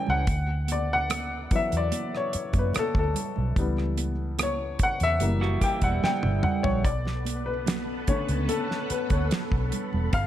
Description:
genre	lush 1970s-style soul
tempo	73 BPM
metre	4/4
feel	straight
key	unclear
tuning	A4 = 441 Hz
part	warm baby grand piano	accompaniment	0.0-10.3 s	C#3 to G5	-28 LUFS	left 3 dB	none
part	electric guitar through a small old amp	riff	0.0-0.2, 5.4-6.8 s	E3 to G4	-32 LUFS	right 6 dB	none
part	vintage muted fingered electric bass	bass	0.1-10.3 s	E1 to F#2	-28 LUFS	equal	none
part	congas	percussion	0.1-10.3 s	none	-36 LUFS	right 7 dB	none
part	damped 70s drum kit	drums	0.3-10.3 s	hi-hat, kick drum, rim click, snare drum, toms	-28 LUFS	equal	none
part	string machine, violins	sustained chords	6.8-10.3 s	F3 to G5	-33 LUFS	left 1 dB	ensemble chorus
room	little or no reverb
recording	none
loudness	-24 LUFS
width	side -12 dB against mid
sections	0.0-10.3 A section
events	grand piano solo 0.0-10.3; drum fill 6.0-6.8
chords	0.3 D6; 3.6 C#m7b5; 5.2 F#7b9; 6.8 Bm9

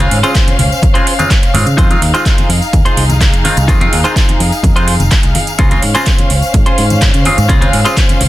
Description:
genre	filtered disco house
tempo	126 BPM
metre	4/4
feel	straight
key	F minor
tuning	A4 = 440 Hz
part	bright clav	accompaniment	0.0-8.0 s	Db3 to F4	-17 LUFS	equal	phaser, vintage 12-bit sampler grit, sidechain pumping
part	warm studio violin section	sustained chords	0.0-8.3 s	Db4 to F5	-18 LUFS	left 1 dB	sidechain pumping
part	fingered electric bass	bass	0.0-8.3 s	F1 to Db3	-14 LUFS	equal	sidechain pumping
part	house drum kit	drums	0.0-8.3 s	handclaps, hi-hat	-18 LUFS	right 2 dB	sidechain pumping on hats, sidechain pumping on cymbals
part	tambourine and congas	percussion	0.0-8.3 s	none	-22 LUFS	left 2 dB	sidechain pumping on perc
part	clean electric guitar	riff	0.1-8.2 s	Db4 to C5	-18 LUFS	equal	sidechain pumping
part	electronic kick drum	drums	0.4-8.1 s	none	-12 LUFS	equal	none
room	little or no reverb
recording	dense, heavily limited modern master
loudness	-8 LUFS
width	side -15 dB against mid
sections	0.0-8.3 A section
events	none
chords	0.0 Dbmaj7; 1.8 Fm7; 5.6 Dbmaj7

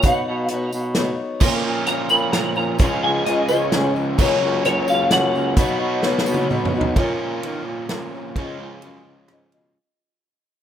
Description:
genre	folk rock and heartland rock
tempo	130 BPM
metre	3/4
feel	straight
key	Db mixolydian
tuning	A4 = 439 Hz
part	twelve-string electric guitar	melody	0.0-6.5 s	Db5 to Cb6	-21 LUFS	equal	ensemble chorus, digital delay
part	picked acoustic archtop guitar	accompaniment	0.0-9.8 s	Db3 to Eb5	-25 LUFS	left 5 dB	none
part	mellow baritone saxophone	bass	0.0-9.7 s	Db2 to F3	-26 LUFS	right 1 dB	none
part	natural country drum kit	drums	0.0-9.6 s	crash cymbal, hi-hat, kick drum, ride cymbal, rim click, snare drum, toms	-21 LUFS	right 1 dB	none
part	tambourine	percussion	0.0-6.4 s	none	-39 LUFS	right 3 dB	none
part	overdriven electric guitar	riff	1.4-9.8 s	Bb2 to Gb4	-24 LUFS	right 2 dB	none
room	light reverb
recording	rough home demo mix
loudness	-18 LUFS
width	side -10 dB against mid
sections	0.0-7.0 A section; 7.0-9.8 B section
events	drum fill 6.0-7.0; fade-out 7.0-9.8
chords	0.0 Cbadd9; 1.4 Bbm; 2.8 Dbadd9; 4.2 Gb/Db; 5.6 Cbadd9; 7.0 Bbm; 8.4 Dbadd9

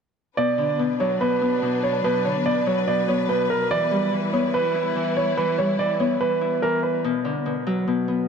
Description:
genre	hip hop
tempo	144 BPM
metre	4/4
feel	half-time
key	B minor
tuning	A4 = 441 Hz
part	dark grand piano	melody	0.4-7.0 s	A#4 to D5	-23 LUFS	right 4 dB	low-pass filter, ping-pong delay
part	Celtic harp	accompaniment	0.4-8.3 s	B2 to E4	-24 LUFS	left 3 dB	low-pass filter
part	warm studio string section	sustained chords	0.4-7.0 s	F#3 to B4	-30 LUFS	left 3 dB	none
room	light reverb, small room ambience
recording	dark, warm production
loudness	-20 LUFS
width	side -6 dB against mid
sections	0.4-7.0 A section; 7.0-8.3 B section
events	none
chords	0.4 Bm; 3.7 Em; 7.0 Bm

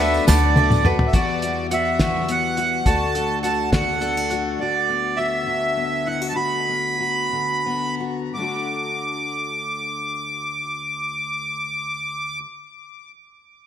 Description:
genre	indie folk with a building arrangement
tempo	56-70 BPM (dotted quarters)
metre	6/8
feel	straight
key	D major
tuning	A4 = 440 Hz
part	accordion	melody	0.0-12.4 s	D5 to D6	-23 LUFS	right 2 dB	ping-pong delay
part	dark French horn	second line	0.0-1.1 s	D4 to F#4	-28 LUFS	left 8 dB	none
part	felt-muted upright piano	accompaniment	0.0-1.2 s	D2 to D5	-31 LUFS	left 2 dB	none
part	picked twelve-string acoustic guitar	accompaniment	0.0-4.6 s	E2 to F#4	-28 LUFS	left 8 dB	none
part	warm brass ensemble	sustained chords	0.0-1.1 s	none	barely audible	none	none
part	mandolin	arpeggios	0.0-4.6 s	F#4 to A5	-26 LUFS	right 4 dB	ping-pong delay
part	upright bass	bass	0.0-4.5 s	D2 to E2	-25 LUFS	equal	none
part	tambourine	percussion	0.0-0.8 s	none	-31 LUFS	right 5 dB	none
part	cloth-damped thuddy drum kit	drums	0.3-4.4 s	hi-hat, kick drum, snare drum, toms	-20 LUFS	equal	gated reverb
part	fingerpicked steel-string acoustic guitar	accompaniment	1.1-12.5 s	D2 to F#4	-28 LUFS	left 5 dB	none
room	moderate lush hall reverb, RT60 1.7 s, studio ambience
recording	bright 1980s-style digital production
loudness	-19 LUFS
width	side -9 dB against mid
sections	0.0-1.1 A section; 1.1-8.3 B section; 8.3-12.7 C section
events	drum fill 0.3-1.1; slowing down 4.6-8.3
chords	0.0 Bm7/D; 1.1 Emadd9; 2.9 D; 4.6 Bm/D; 8.3 D

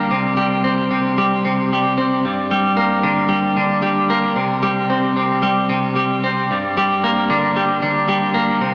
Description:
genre	rock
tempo	113 BPM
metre	4/4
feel	straight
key	G minor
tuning	A4 = 440 Hz
part	twelve-string electric guitar	solo	0.0-8.7 s	G2 to C4	-15 LUFS	equal	harmonic tremolo, analog delay
room	wet huge ambient reverb, RT60 7.9 s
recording	dreamy mix soaked in reverb, small speaker sound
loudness	-15 LUFS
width	side -28 dB against mid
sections	0.0-8.7 A section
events	none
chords	0.1 C5; 2.2 Gm; 4.4 C5; 6.5 Gm

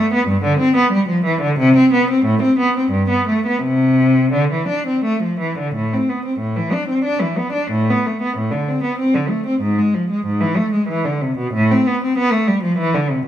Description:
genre	classical, baroque-style suite movement for unaccompanied cello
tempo	82-98 BPM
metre	3/4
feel	rubato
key	C major, A minor from 5.8 s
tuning	A4 = 440 Hz
part	warm cello	solo	0.0-13.3 s	G2 to D4	-15 LUFS	equal	none
room	moderate recital hall reverb, RT60 1.3 s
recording	close, detailed microphones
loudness	-15 LUFS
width	side -11 dB against mid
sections	0.0-5.8 A section; 5.8-13.3 A section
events	none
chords	none

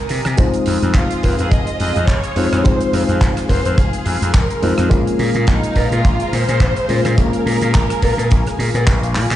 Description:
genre	nu-disco, nu disco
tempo	106 BPM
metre	4/4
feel	swing 56% on 16ths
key	unclear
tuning	A4 = 440 Hz
part	reed electric piano	accompaniment	0.0-9.1 s	Ab3 to C5	-21 LUFS	left 2 dB	sidechain pumping, slapback echo
part	lush unison pad	sustained chords	0.0-9.4 s	Ab4 to F6	-28 LUFS	left 2 dB	chorus, phaser, sidechain pumping
part	gritty slap bass	bass	0.1-9.4 s	F1 to C3	-19 LUFS	equal	overdrive, tube saturation
part	damped 70s drum kit	drums	0.1-9.4 s	handclaps, hi-hat, rim click	-26 LUFS	right 1 dB	none
part	kick drum	drums	0.4-9.0 s	none	-14 LUFS	equal	none
part	dark studio violin section	melody	0.9-8.9 s	Eb4 to Eb5	-23 LUFS	right 1 dB	tape echo
part	cowbell	percussion	1.2-8.8 s	none	-28 LUFS	left 1 dB	none
room	light reverb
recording	played on a big sound system in a bare room, large studio reverb, nothing above 10.4 kHz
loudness	-14 LUFS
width	side -13 dB against mid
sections	0.0-9.4 A section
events	drum fill 9.2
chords	0.4 Fm7; 4.9 Bbm7

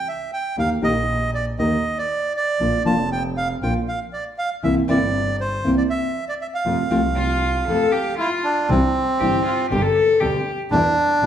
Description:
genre	tango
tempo	118 BPM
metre	4/4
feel	rubato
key	F major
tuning	A4 = 440 Hz
part	bandoneon	melody	0.0-11.3 s	C4 to A5	-22 LUFS	right 2 dB	none
part	nylon-string guitar	accompaniment	0.6-11.3 s	B2 to Bb4	-23 LUFS	left 1 dB	none
part	clear double bass	bass	0.6-11.3 s	F1 to F2	-25 LUFS	right 1 dB	none
part	rich cello	second line	7.2-10.6 s	F4 to A4	-21 LUFS	left 4 dB	none
room	wet recital hall reverb, RT60 1.4 s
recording	recorded in a church or concert hall, vinyl crackle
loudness	-18 LUFS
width	side -9 dB against mid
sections	0.0-8.7 A section; 8.7-11.3 B section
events	none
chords	0.0 C (rootless); 0.6 Eb; 2.6 Bb; 4.6 C7; 6.7 F; 8.7 Cadd9; 9.7 G; 10.7 Em7

